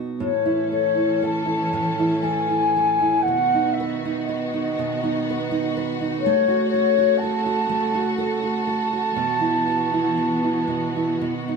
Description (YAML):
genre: celtic folk, Celtic slow air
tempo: 60 BPM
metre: 3/4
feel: rubato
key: unclear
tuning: A4 = 440 Hz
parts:
  - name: fingerpicked steel-string acoustic guitar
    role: accompaniment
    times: 0.0-11.6 s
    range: A2 to B4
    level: -24 LUFS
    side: right 3 dB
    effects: none
  - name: baroque flute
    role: melody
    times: 0.2-11.1 s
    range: C#5 to A5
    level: -22 LUFS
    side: left 2 dB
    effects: none
  - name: clear studio string section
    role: sustained chords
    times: 0.2-11.6 s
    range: C#3 to A4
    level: -29 LUFS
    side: left 2 dB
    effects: none
room: wet stone room reverb, RT60 1.2 s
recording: band playing live in one room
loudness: -19 LUFS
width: side -4 dB against mid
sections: 0.2-11.6 A section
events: none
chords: 0.2 A; 3.2 B; 6.2 F#m; 9.1 Bsus4